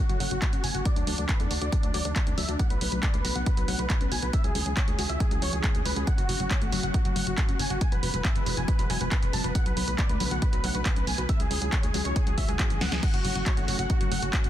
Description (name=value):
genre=uplifting trance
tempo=138 BPM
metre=4/4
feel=straight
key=F# minor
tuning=A4 = 440 Hz
part: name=big supersaw lead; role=melody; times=0.0-14.5 s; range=D4 to A5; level=-33 LUFS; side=right 1 dB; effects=sidechain pumping, low-pass filter, tape echo
part: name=analog string pad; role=sustained chords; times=0.0-14.5 s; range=D3 to F#4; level=-38 LUFS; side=left 1 dB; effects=ensemble chorus, sidechain pumping
part: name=wide unison pluck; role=arpeggios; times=0.1-14.5 s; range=F#2 to F#4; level=-37 LUFS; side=left 4 dB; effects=sidechain pumping, tape echo
part: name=solid FM bass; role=bass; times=0.1-14.5 s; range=E1 to E2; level=-31 LUFS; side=equal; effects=sidechain pumping
part: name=punchy analog drum machine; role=drums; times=0.1-14.5 s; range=crash cymbal, handclaps, hi-hat, snare drum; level=-32 LUFS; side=right 1 dB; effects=studio ambience
part: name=electronic kick drum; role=drums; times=0.4-14.4 s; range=none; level=-26 LUFS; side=equal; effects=studio ambience
part: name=swell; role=sound effects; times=12.4-13.0 s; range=none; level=barely audible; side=none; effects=none
room=digital ambience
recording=dense, heavily limited modern master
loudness=-24 LUFS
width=side -12 dB against mid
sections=0.0-14.5 A section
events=filter sweep on analog synth pad 0.0-14.5; drum fill 12.8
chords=0.0 F#m; 0.9 D; 2.6 Bm7; 4.3 C#m; 6.1 F#m; 7.8 E; 9.6 Bm7; 11.3 C#m; 13.0 F#m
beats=0.42 | 0.85 1.29 1.73 2.16 | 2.59 3.03 3.46 3.90 | 4.33 4.77 5.20 5.64 | 6.07 6.51 6.94 7.38 | 7.81 8.25 8.68 9.12 | 9.55 9.99 10.42 10.86 | 11.29 11.72 12.16 12.59 | 13.03 13.46 13.90 14.33